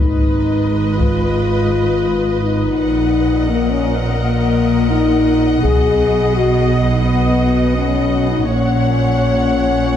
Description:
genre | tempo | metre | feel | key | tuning
cinematic, epic orchestral film score | 84 BPM | 4/4 | straight | Eb minor | A4 = 442 Hz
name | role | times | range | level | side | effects
clear symphonic violin section | melody | 0.0-10.0 s | Eb5 to Gb5 | -28 LUFS | left 5 dB | none
rich symphonic violin section | second line | 0.0-10.0 s | Cb5 to Gb5 | -27 LUFS | left 3 dB | none
clear symphonic viola section | accompaniment | 0.0-10.0 s | Bb4 to D#5 | -26 LUFS | right 1 dB | none
mellow French horn section | sustained chords | 0.0-10.0 s | Bb3 to Ab4 | -17 LUFS | left 4 dB | none
rich symphonic cello section | bass | 0.0-10.0 s | Ab2 to B2 | -20 LUFS | right 3 dB | none
rich symphonic double bass section | bass | 0.0-10.0 s | Ab1 to B1 | -20 LUFS | right 2 dB | none
taiko ensemble | drums | 1.0-1.3, 5.6-7.0 s | none | -19 LUFS | left 1 dB | none
room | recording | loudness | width
moderate scoring stage reverb, RT60 1.9 s | dark, warm production | -13 LUFS | side -9 dB against mid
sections
0.0-10.0 A section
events
none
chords
0.0 Abm; 2.8 Ebm/Bb; 5.6 B; 8.5 Gb/Bb

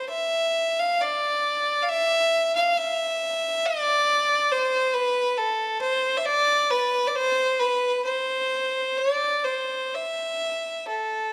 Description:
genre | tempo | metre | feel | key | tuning
celtic folk | 60-72 BPM | 3/4 | rubato | D dorian | A4 = 439 Hz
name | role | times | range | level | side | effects
clear fiddle | solo | 0.0-11.3 s | A4 to F5 | -24 LUFS | equal | none
room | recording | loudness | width
moderate scoring stage reverb, RT60 1.6 s | dark, warm production | -24 LUFS | mono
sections
0.0-10.9 A section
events
none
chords
none

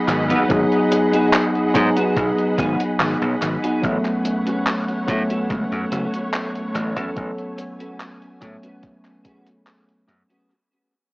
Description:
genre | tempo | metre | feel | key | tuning
vaporwave | 72 BPM | 4/4 | straight | A lydian | A4 = 439 Hz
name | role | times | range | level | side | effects
mellow tine electric piano | accompaniment | 0.0-10.5 s | F#3 to A4 | -21 LUFS | equal | wide subtle chorus, tape echo
soft string machine | sustained chords | 0.0-10.5 s | A3 to B5 | -27 LUFS | equal | ensemble chorus
clean electric guitar | riff | 0.1-10.5 s | B3 to B4 | -27 LUFS | equal | analog chorus, tape echo
slap bass | bass | 0.1-10.2 s | F#1 to A2 | -23 LUFS | equal | tube saturation
gated 80s digital drum machine | drums | 0.1-10.5 s | cabasa, handclaps, hi-hat | -25 LUFS | equal | gated reverb, vintage 12-bit sampler grit, tape echo
electronic kick drum | drums | 0.5-9.4 s | none | -28 LUFS | equal | vintage 12-bit sampler grit
room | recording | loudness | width
moderate plate reverb, RT60 3.0 s | echo-heavy mix, cassette tape, small speaker sound | -18 LUFS | side -24 dB against mid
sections
0.0-10.5 A section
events
fade-out 1.6-10.5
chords
0.0 G#m7; 3.8 A69

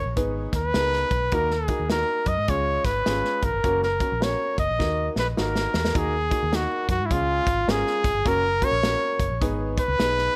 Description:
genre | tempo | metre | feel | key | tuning
uptempo 1960s-style soul | 104 BPM | 4/4 | swing 62% on 8ths | Eb minor | A4 = 440 Hz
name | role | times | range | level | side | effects
clear trumpet | melody | 0.0-10.4 s | Fb4 to Eb5 | -27 LUFS | equal | none
vintage muted fingered electric bass | bass | 0.0-10.3 s | Gb1 to Ab2 | -31 LUFS | equal | none
warm grand piano | accompaniment | 0.2-10.4 s | Ab3 to Cb5 | -32 LUFS | equal | none
natural country drum kit | drums | 0.2-10.3 s | hi-hat, kick drum, snare drum | -30 LUFS | equal | none
room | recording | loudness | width
small room reverb | none | -24 LUFS | mono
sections
0.0-6.0 A section; 6.0-10.4 A section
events
drum fill 4.8-6.0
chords
0.2 Abm; 1.3 Ebm; 2.5 Db; 3.6 Gb; 4.8 Ebm; 7.1 Db; 8.3 Gb; 9.4 Abm

